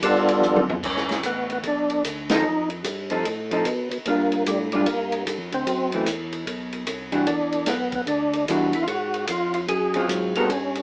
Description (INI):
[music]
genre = soul jazz organ trio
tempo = 149 BPM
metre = 4/4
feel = swing 64% on 8ths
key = unclear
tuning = A4 = 440 Hz
[part]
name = percussive tonewheel organ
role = melody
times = 0.0-10.8 s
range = G3 to Bb4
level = -23 LUFS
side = equal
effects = overdrive, chorus vibrato, stopped rotary speaker
[part]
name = tonewheel organ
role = bass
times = 0.0-10.8 s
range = G1 to B2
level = -30 LUFS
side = equal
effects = overdrive, chorus vibrato, slow rotary speaker
[part]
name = warm soul drum kit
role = drums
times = 0.0-10.8 s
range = crash cymbal, hi-hat, kick drum, ride cymbal, snare drum, toms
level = -28 LUFS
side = equal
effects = none
[part]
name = vintage hollow-body jazz guitar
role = accompaniment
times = 2.3-10.5 s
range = E3 to A4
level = -23 LUFS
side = equal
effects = none
[sound]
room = moderate studio reverb, RT60 0.6 s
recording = band playing live in one room, small speaker sound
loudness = -21 LUFS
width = side -34 dB against mid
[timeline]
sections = 0.8-10.8 A section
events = drum fill 0.4-0.8; band accent 2.2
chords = 0.0 G7; 0.8 Gadd9; 2.4 F7; 4.1 Bb6; 5.7 F#m7b5; 6.5 B5; 7.3 Em9; 8.9 Ab6